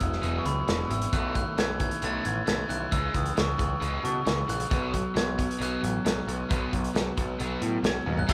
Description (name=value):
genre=indie rock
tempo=134 BPM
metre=4/4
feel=straight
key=unclear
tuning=A4 = 445 Hz
part: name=glockenspiel with hard plastic mallets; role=melody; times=0.0-8.3 s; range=B5 to A6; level=-35 LUFS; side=equal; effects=none
part: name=biting overdriven guitar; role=riff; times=0.0-8.3 s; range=E2 to E4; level=-37 LUFS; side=equal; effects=none
part: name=raw garage guitar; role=riff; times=0.0-8.3 s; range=B2 to E4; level=-37 LUFS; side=equal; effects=overdrive
part: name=growling picked electric bass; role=bass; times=0.0-8.3 s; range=E1 to B2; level=-34 LUFS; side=equal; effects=overdrive
part: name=loose indie drum kit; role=drums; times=0.0-8.3 s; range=crash cymbal, hi-hat, kick drum, snare drum, toms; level=-32 LUFS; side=equal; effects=none
part: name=string machine, violins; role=sustained chords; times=8.3 s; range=F#4 to B5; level=-37 LUFS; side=equal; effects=ensemble chorus
room=moderate large studio reverb, RT60 1.3 s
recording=band playing live in one room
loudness=-28 LUFS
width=mono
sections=0.0-8.3 A section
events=drum fill 8.1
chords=0.0 Eadd9; 1.1 B7sus4; 2.9 C#m; 4.7 B5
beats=0.23 0.68 | 1.13 1.57 2.02 2.47 | 2.92 3.36 3.81 4.26 | 4.71 5.15 5.60 6.05 | 6.49 6.94 7.39 7.83 | 8.28